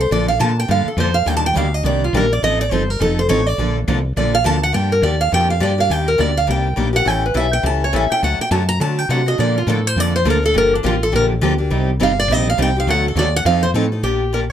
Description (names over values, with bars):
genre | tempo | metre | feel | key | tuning
acoustic string swing (jazz manouche) | 207 BPM | 4/4 | swing 59% on 8ths | Bb major, G minor from 4.7 s | A4 = 437 Hz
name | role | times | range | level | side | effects
picked steel-string acoustic guitar | melody | 0.0-14.5 s | D4 to Bb5 | -18 LUFS | right 1 dB | none
woody fretless electric bass | bass | 0.0-14.5 s | F1 to D3 | -19 LUFS | equal | none
picked steel-string acoustic guitar | accompaniment | 0.1-14.4 s | C3 to A4 | -22 LUFS | left 2 dB | none
picked steel-string acoustic guitar | accompaniment | 0.1-4.6, 9.4-13.8 s | C3 to A4 | -24 LUFS | right 6 dB | none
room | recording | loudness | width
little or no reverb | close, detailed microphones | -14 LUFS | side -10 dB against mid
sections
0.0-4.7 A section; 4.7-14.0 A section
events
steel-string acoustic guitar solo 0.0-14.0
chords
0.1 Bbmaj7; 1.3 Ebmaj7; 2.4 F7; 3.6 Bbmaj7; 4.7 Gm7; 5.9 Ebmaj7; 7.1 A7; 8.2 D; 9.4 Bbmaj7; 10.5 Gm7; 11.7 Cm; 12.9 D; 13.4 F7